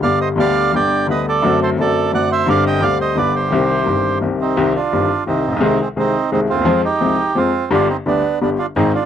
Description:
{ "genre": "tango", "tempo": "172 BPM", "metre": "3/4", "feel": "rubato", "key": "C harmonic minor", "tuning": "A4 = 442 Hz", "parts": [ { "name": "bandoneon", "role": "melody", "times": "0.0-9.1 s", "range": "Ab3 to G5", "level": "-18 LUFS", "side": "right 6 dB", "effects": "none" }, { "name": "bright baby grand piano", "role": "accompaniment", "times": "0.0-8.9 s", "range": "G1 to Ab4", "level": "-16 LUFS", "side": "left 3 dB", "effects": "none" } ], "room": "moderate booth ambience, RT60 0.2 s", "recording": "dry, close 1970s-style studio recording", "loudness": "-14 LUFS", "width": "side -9 dB against mid", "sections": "0.0-4.6 A section; 4.6-9.1 B section", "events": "none", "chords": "0.0 G; 1.4 D7/F#; 2.5 Gsus4; 3.2 G; 3.5 Cm; 5.6 Ab/C; 6.7 Fm; 7.7 G", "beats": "0.03 | 0.38 0.73 1.08 | 1.43 1.78 2.13 | 2.48 2.82 3.17 | 3.52 3.87 4.22 | 4.57 4.92 5.27 | 5.62 5.97 6.32 | 6.67 7.01 7.36 | 7.71 8.06 8.41 | 8.76" }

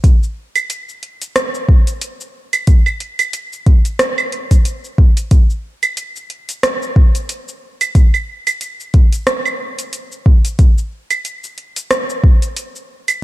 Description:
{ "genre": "downtempo", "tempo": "91 BPM", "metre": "4/4", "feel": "swing 57% on 16ths", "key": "none", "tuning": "none", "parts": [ { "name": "afro-pop drum kit", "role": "drums", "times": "0.0-13.2 s", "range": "cabasa, claves, hi-hat, rim click", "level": "-18 LUFS", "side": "right 2 dB", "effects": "none" }, { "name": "electronic kick drum", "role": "drums", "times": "0.0-12.4 s", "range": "none", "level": "-9 LUFS", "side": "equal", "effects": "overdrive" } ], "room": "little or no reverb", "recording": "dark, warm production", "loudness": "-12 LUFS", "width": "side -17 dB against mid", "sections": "0.0-13.2 A section", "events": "none", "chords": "none", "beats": "| 0.04 0.70 1.36 2.02 | 2.67 3.33 3.99 4.65 | 5.31 5.97 6.63 7.29 | 7.95 8.61 9.27 9.93 | 10.59 11.25 11.91 12.56" }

